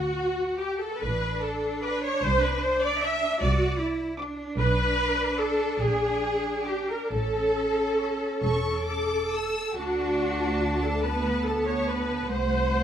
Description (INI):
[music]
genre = classical, slow romantic movement for string orchestra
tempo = 44-52 BPM (dotted quarters)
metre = 6/8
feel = rubato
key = D major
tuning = A4 = 438 Hz
[part]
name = rich symphonic violin section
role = second line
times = 0.0-12.8 s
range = F#4 to E5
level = -33 LUFS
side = left 1 dB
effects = none
[part]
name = clear studio viola section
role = accompaniment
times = 0.0-12.8 s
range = F#4 to E5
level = -27 LUFS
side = equal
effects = none
[part]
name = rich symphonic double bass section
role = bass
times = 0.0-12.8 s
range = E1 to D2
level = -30 LUFS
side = right 1 dB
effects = none
[part]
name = warm symphonic violin section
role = melody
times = 0.6-12.8 s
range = F#5 to E6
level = -36 LUFS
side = left 3 dB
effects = none
[part]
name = rich studio cello section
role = bass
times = 1.0-12.8 s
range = A3 to F#4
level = -32 LUFS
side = right 3 dB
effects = none
[sound]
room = light reverb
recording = close, detailed microphones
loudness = -24 LUFS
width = side -9 dB against mid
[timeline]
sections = 0.0-12.8 A section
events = none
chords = 0.0 D; 2.2 D7/C; 4.6 Bm7; 5.8 Bb7; 7.1 A; 9.8 D; 12.3 Am6/C